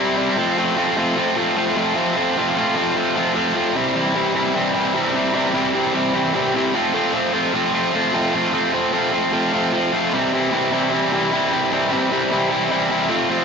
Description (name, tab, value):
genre	punk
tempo	151 BPM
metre	4/4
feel	straight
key	C major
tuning	A4 = 438 Hz
part	distorted electric guitar	solo	0.0-13.4 s	C3 to F4	-17 LUFS	equal	overdrive
room	moderate small room ambience, RT60 0.5 s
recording	rough rehearsal-room recording, warm saturation, nothing above 7.6 kHz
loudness	-17 LUFS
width	side -6 dB against mid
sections	0.0-13.4 A section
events	none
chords	0.4 F; 3.7 C; 6.7 F; 10.1 C